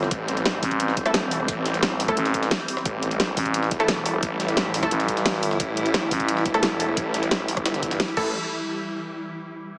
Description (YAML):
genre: dark technical drum and bass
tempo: 175 BPM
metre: 4/4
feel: straight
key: A minor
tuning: A4 = 438 Hz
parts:
  - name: swarming drone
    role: sustained chords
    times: 0.0-8.3 s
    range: E3 to E4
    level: -28 LUFS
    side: equal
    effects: built-in reverb, sidechain pumping
  - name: orchestra-hit-like synth stab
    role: stabs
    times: 0.0-8.3 s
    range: A3 to A4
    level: -27 LUFS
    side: equal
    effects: built-in reverb, digital delay
  - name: growling FM bass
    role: bass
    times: 0.0-6.4 s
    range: A1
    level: -22 LUFS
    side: equal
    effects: none
  - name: dubstep drum kit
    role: drums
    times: 0.0-8.2 s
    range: crash cymbal, hi-hat, rim click, snare drum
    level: -26 LUFS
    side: equal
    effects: none
  - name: jungle sampler-style drum kit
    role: drums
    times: 0.0-8.2 s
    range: hi-hat, snare drum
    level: -31 LUFS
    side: equal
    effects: high-pass filter on snare, high-pass filter on hats
  - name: snarling distorted saw bass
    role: bass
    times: 0.1-8.3 s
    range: E1 to A1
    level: -28 LUFS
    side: equal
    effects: distortion, overdrive, sidechain pumping
  - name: electronic kick drum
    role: drums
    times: 0.1-8.2 s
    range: none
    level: -32 LUFS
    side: equal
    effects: none
room: moderate plate reverb, RT60 1.1 s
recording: heavily compressed radio sound, multiband compression, small speaker sound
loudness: -21 LUFS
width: side -30 dB against mid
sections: 0.0-8.3 A section; 8.3-9.7 B section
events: drop 0.0-8.3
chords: 0.0 Am; 8.3 N.C.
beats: | 0.11 0.46 0.80 1.14 | 1.48 1.83 2.17 2.51 | 2.85 3.20 3.54 3.88 | 4.23 4.57 4.91 5.25 | 5.60 5.94 6.28 6.63 | 6.97 7.31 7.66 8.00